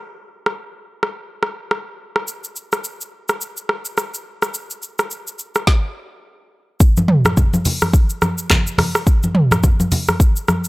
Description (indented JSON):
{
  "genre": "afrobeats",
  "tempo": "106 BPM",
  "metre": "4/4",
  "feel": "swing 58% on 16ths",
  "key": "none",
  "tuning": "none",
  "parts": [
    { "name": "deep house drum kit", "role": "drums", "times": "0.5-10.7 s", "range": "handclaps, hi-hat, kick drum, rim click, shaker, snare drum, toms", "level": "-16 LUFS", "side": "equal", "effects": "none" },
    { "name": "congas", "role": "percussion", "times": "7.0-10.6 s", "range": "none", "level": "-19 LUFS", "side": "equal", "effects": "none" }
  ],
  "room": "little or no reverb",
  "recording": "dry, gritty hardware recording",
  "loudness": "-16 LUFS",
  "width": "side -22 dB against mid",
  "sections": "0.0-6.8 A section; 6.8-10.7 B section",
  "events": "none",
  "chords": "none"
}